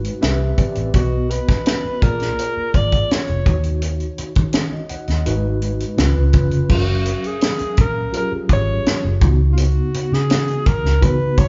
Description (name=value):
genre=lush 1970s-style soul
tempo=83 BPM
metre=4/4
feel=straight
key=F# major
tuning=A4 = 440 Hz
part: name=mellow tine electric piano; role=accompaniment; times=0.0-11.5 s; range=C#3 to F#5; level=-26 LUFS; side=equal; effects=none
part: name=vintage muted fingered electric bass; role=bass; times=0.0-11.0 s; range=E#1 to D#3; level=-23 LUFS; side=equal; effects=none
part: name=tight funk drum kit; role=drums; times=0.0-11.5 s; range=crash cymbal, hi-hat, kick drum, snare drum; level=-21 LUFS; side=equal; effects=none
part: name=mellow alto saxophone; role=melody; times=1.0-11.5 s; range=E#4 to D5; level=-26 LUFS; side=equal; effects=none
room=moderate large studio reverb, RT60 1.2 s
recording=band playing live in one room, nothing above 7.5 kHz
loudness=-18 LUFS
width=mono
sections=0.0-6.7 A section; 6.7-11.5 B section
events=none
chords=0.2 Cmaj7; 0.9 B; 2.0 A#7; 3.5 D#m7; 5.3 G#m7; 6.0 C#7; 6.7 F#maj7; 9.2 C#9sus4